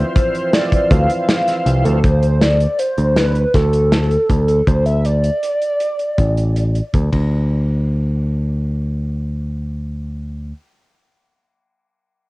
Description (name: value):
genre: progressive instrumental, band music in an uneven meter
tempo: 159 BPM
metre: 7/4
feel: straight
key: D dorian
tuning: A4 = 440 Hz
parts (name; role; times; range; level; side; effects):
- hollow square lead; melody; 0.0-6.9 s; A4 to F5; -18 LUFS; equal; chorus, cassette tape, tape echo
- bright tonewheel organ; accompaniment; 0.0-2.0 s; E3 to C4; -22 LUFS; equal; overdrive, chorus vibrato, slow rotary speaker, cassette tape, plate reverb
- warm soul drum kit; drums; 0.2-7.2 s; hi-hat, kick drum, ride cymbal, snare drum; -18 LUFS; equal; none
- picked electric bass; bass; 0.9-10.5 s; A1 to D2; -16 LUFS; equal; tube saturation
room: light reverb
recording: home recording on cassette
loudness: -14 LUFS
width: side -20 dB against mid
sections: 0.0-2.0 A section; 2.0-7.3 B section; 7.3-10.0 C section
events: drum fill 7.1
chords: 0.0 Dm7; 2.0 D5; 7.1 N.C.